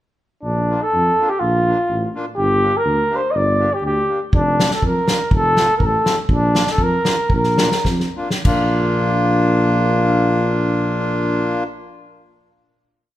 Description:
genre	alpine folk, alpine dance band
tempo	96-125 BPM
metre	2/4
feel	rubato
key	Bb major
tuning	A4 = 440 Hz
part	mellow flugelhorn	melody	0.4-7.8 s	D4 to Eb5	-17 LUFS	equal	none
part	dark tuba	bass	0.4-11.6 s	F1 to F2	-21 LUFS	right 1 dB	none
part	accordion	accompaniment	0.7-11.6 s	A3 to G4	-21 LUFS	left 2 dB	none
part	unplugged drum kit	drums	4.3-8.6 s	crash cymbal, kick drum, snare drum	-18 LUFS	equal	none
room	moderate recital hall reverb, RT60 1.6 s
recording	recorded in a church or concert hall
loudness	-15 LUFS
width	side -13 dB against mid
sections	0.4-8.4 A section; 8.4-10.9 final chord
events	slowing down 6.3-8.4; drum fill 7.8-8.4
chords	0.4 Bb; 2.4 Gm; 4.3 Bb/F; 5.3 F; 6.3 Bb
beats	| 0.44 0.94 | 1.42 1.90 | 2.38 2.86 | 3.35 3.83 | 4.33 4.83 | 5.32 5.80 | 6.29 6.78 | 7.29 7.84 | 8.44 9.06 | 9.66 10.26

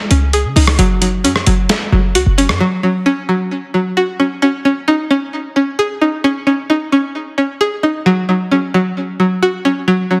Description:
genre	hip hop, trap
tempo	132 BPM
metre	4/4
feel	half-time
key	unclear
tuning	A4 = 439 Hz
part	string-like resonator pluck	arpeggios	0.0-10.2 s	F#3 to G#4	-16 LUFS	equal	chorus, digital delay
part	short 808-style bass	bass	0.1-2.6 s	F#1 to C#3	-16 LUFS	equal	none
part	dusty soul sampler-style drum kit	drums	0.1-2.6 s	hi-hat, rim click, snare drum	-20 LUFS	equal	none
room	light reverb, digital ambience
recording	dense, heavily limited modern master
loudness	-15 LUFS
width	mono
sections	0.0-4.4 A section; 4.4-10.2 B section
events	break 2.6-4.4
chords	0.0 C#sus2; 0.8 F#5; 4.4 C#sus2; 8.1 F#5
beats	0.33 | 0.79 1.24 1.70 2.15 | 2.60 3.06 3.51 3.97 | 4.42 4.88 5.33 5.79 | 6.24 6.70 7.15 7.61 | 8.06 8.51 8.97 9.42 | 9.88

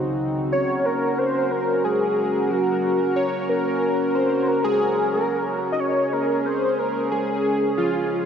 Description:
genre	synthwave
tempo	91 BPM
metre	4/4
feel	straight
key	unclear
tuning	A4 = 441 Hz
part	chorused pulse-width pad	sustained chords	0.0-8.3 s	Db3 to Bb4	-23 LUFS	equal	none
part	wide unison lead	melody	0.5-8.2 s	F4 to Eb5	-22 LUFS	equal	analog chorus, diffuse ambient delay
room	wet lush hall reverb, RT60 3.3 s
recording	dreamy mix soaked in reverb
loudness	-20 LUFS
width	side -7 dB against mid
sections	0.5-8.3 A section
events	none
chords	0.0 Ab/Db (rootless); 0.5 Gb/Db; 5.8 Db5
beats	| 0.52 1.18 1.84 2.50 | 3.16 3.82 4.48 5.13 | 5.79 6.45 7.11 7.77

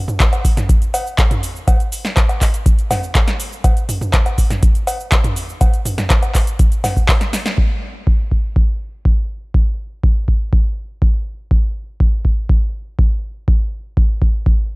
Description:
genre	house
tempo	122 BPM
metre	4/4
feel	straight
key	none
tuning	none
part	electro analog drum machine	drums	0.1-7.6 s	cabasa, cowbell, handclaps, hi-hat, snare drum, toms	-20 LUFS	equal	low-pass filter on toms, low-pass filter on hats, low-pass filter on perc, low-pass filter on snare, low-pass filter on room
part	electronic kick drum	drums	0.2-14.6 s	none	-14 LUFS	equal	none
room	little or no reverb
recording	none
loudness	-14 LUFS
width	side -25 dB against mid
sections	0.0-7.6 A section; 7.6-14.8 B section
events	drop 0.0-7.6; drum fill 7.2-7.6; band accent 7.5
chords	none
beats	0.20 0.69 1.18 | 1.68 2.17 2.66 3.15 | 3.64 4.13 4.63 5.12 | 5.61 6.10 6.59 7.08 | 7.58 8.07 8.56 9.05 | 9.54 10.04 10.53 11.02 | 11.51 12.00 12.49 12.99 | 13.48 13.97 14.46

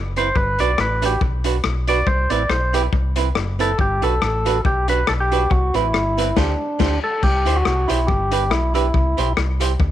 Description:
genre	ska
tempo	140 BPM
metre	4/4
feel	swing 55% on 8ths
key	unclear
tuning	A4 = 440 Hz
part	fingered electric bass	bass	0.0-9.9 s	F#1 to D2	-21 LUFS	equal	none
part	percussive tonewheel organ	melody	0.2-9.3 s	D4 to D5	-21 LUFS	equal	overdrive
part	archtop guitar, miked and amplified	accompaniment	0.2-9.7 s	C4 to C5	-25 LUFS	right 12 dB	none
part	crunchy breakbeat drum kit	drums	0.2-9.9 s	crash cymbal, hi-hat, kick drum, rim click, snare drum	-23 LUFS	left 3 dB	tape echo
room	light reverb, small room ambience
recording	1960s-style stereo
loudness	-16 LUFS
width	side -12 dB against mid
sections	0.0-7.2 A section; 7.2-9.9 B section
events	band accent 6.4-7.2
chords	0.4 Gmaj7 (rootless); 2.1 Cmaj7; 3.8 Gmaj7; 5.5 Cmaj7; 6.4 D7sus4; 7.2 C; 8.1 G; 8.9 C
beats	| 0.36 0.79 1.22 1.64 | 2.07 2.50 2.93 3.36 | 3.79 4.22 4.65 5.08 | 5.51 5.94 6.37 6.80 | 7.23 7.66 8.09 8.52 | 8.94 9.37 9.80

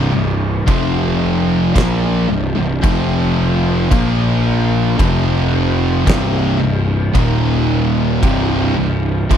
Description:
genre	stoner and doom metal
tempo	56 BPM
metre	4/4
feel	straight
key	C minor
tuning	A4 = 440 Hz
part	distorted electric guitar	riff	0.0-9.4 s	C2 to Bb3	-22 LUFS	right 1 dB	overdrive
part	thick fuzz guitar	riff	0.0-9.4 s	C2 to Bb3	-20 LUFS	left 9 dB	distortion
part	thick fuzz guitar	riff	0.0-9.4 s	C2 to Bb3	-20 LUFS	right 7 dB	distortion
part	fuzz picked electric bass	bass	0.0-9.4 s	C1 to Bb1	-19 LUFS	equal	overdrive, tube saturation
part	oversized low-tuned drum kit	drums	0.7-9.4 s	crash cymbal, kick drum, snare drum	-21 LUFS	equal	none
room	little or no reverb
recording	none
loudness	-13 LUFS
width	side -9 dB against mid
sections	0.0-9.4 A section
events	none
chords	0.0 C5; 0.7 F5; 1.8 C5; 2.8 F5; 3.9 Bb5; 5.0 F5; 6.1 C5; 7.1 Eb5; 8.2 C5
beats	0.68 1.75 2.83 | 3.91 4.99 6.07 7.15 | 8.23 9.31

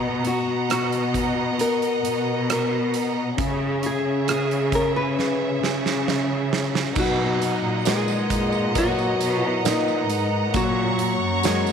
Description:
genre	pop ballad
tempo	67 BPM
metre	4/4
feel	straight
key	B major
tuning	A4 = 440 Hz
part	mellow tine electric piano	accompaniment	0.0-11.7 s	A#3 to D#5	-28 LUFS	left 15 dB	none
part	warm studio string section	sustained chords	0.0-11.7 s	G#4 to C#6	-28 LUFS	right 3 dB	none
part	dark symphonic cello section	bass	0.0-11.7 s	F#2 to C#3	-26 LUFS	right 2 dB	none
part	huge arena drum kit	drums	0.2-11.7 s	crash cymbal, hi-hat, kick drum, rim click, snare drum	-28 LUFS	right 5 dB	none
part	nylon-string guitar	melody	0.3-11.7 s	F#3 to D#5	-25 LUFS	left 1 dB	none
part	tambourine	percussion	7.0-11.7 s	none	-36 LUFS	right 16 dB	none
room	light reverb, small room reverb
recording	1960s-style stereo with parts hard left and right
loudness	-20 LUFS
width	side -7 dB against mid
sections	0.0-7.0 A section; 7.0-11.7 B section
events	drum fill 5.2-7.0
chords	0.0 Bmaj7; 3.4 C#m7; 7.0 Bmaj7; 10.5 F#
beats	0.69 1.59 2.49 | 3.38 4.28 5.17 6.07 | 6.96 7.86 8.75 9.65 | 10.54 11.44

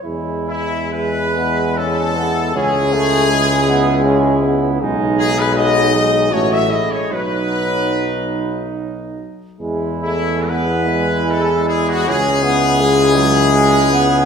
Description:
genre	classical, hymn-like piece for brass band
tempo	65-84 BPM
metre	3/4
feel	rubato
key	E major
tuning	A4 = 439 Hz
part	warm flugelhorn	second line	0.0-14.3 s	D#4 to F#4	-24 LUFS	right 6 dB	none
part	clear euphonium	accompaniment	0.0-14.3 s	F#3 to A3	-23 LUFS	left 1 dB	none
part	clear tuba	bass	0.0-14.3 s	A1 to E2	-19 LUFS	equal	none
part	bright trumpet section	melody	0.5-14.3 s	E4 to E5	-18 LUFS	left 4 dB	none
part	warm trombone	accompaniment	0.9-14.3 s	F#3 to C#4	-21 LUFS	right 1 dB	none
room	wet scoring stage reverb, RT60 1.6 s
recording	heard from further back in the room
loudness	-14 LUFS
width	side -6 dB against mid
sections	0.0-14.3 A section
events	none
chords	0.0 E; 2.6 C#m; 4.8 G#m/B; 6.3 F#m/A; 7.1 B; 9.6 E; 12.1 C#m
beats	| 0.05 0.94 1.76 | 2.55 3.31 4.06 | 4.82 5.56 6.31 | 7.12 7.94 8.77 | 9.60 10.49 11.30 | 12.08 12.81 13.54

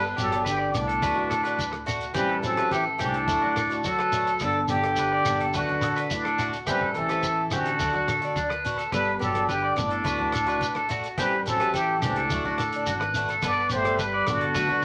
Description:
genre	highlife guitar band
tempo	106 BPM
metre	4/4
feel	straight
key	G major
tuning	A4 = 439 Hz
part	trumpet with plunger mute	melody	0.0-14.8 s	D4 to D5	-29 LUFS	equal	none
part	breathy tenor saxophone	second line	0.0-14.8 s	A2 to B3	-36 LUFS	equal	none
part	picked swing-style acoustic guitar	accompaniment	0.0-14.8 s	E3 to A4	-34 LUFS	equal	none
part	electric guitar at the edge of break-up	arpeggios	0.0-14.8 s	D4 to D5	-31 LUFS	equal	spring reverb
part	upright bass	bass	0.0-14.8 s	G1 to D2	-39 LUFS	equal	none
part	damped 70s drum kit	drums	0.2-14.7 s	hi-hat, kick drum, rim click	-39 LUFS	equal	none
part	shekere	percussion	0.2-14.8 s	none	-37 LUFS	equal	none
room	wet studio reverb, RT60 0.8 s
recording	none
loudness	-25 LUFS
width	mono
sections	0.0-14.8 A section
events	none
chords	0.0 Gadd9; 1.0 D; 2.2 Am7; 3.3 D; 4.4 Gadd9; 5.5 D; 6.7 Am7; 7.8 D; 8.9 Gadd9; 10.0 D; 11.2 Am7; 12.3 D; 13.4 Gadd9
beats	0.46 1.03 1.59 | 2.16 2.72 3.29 3.85 | 4.41 4.98 5.54 6.11 | 6.67 7.23 7.80 8.36 | 8.92 9.49 10.05 10.61 | 11.18 11.74 12.30 12.87 | 13.43 13.99 14.55

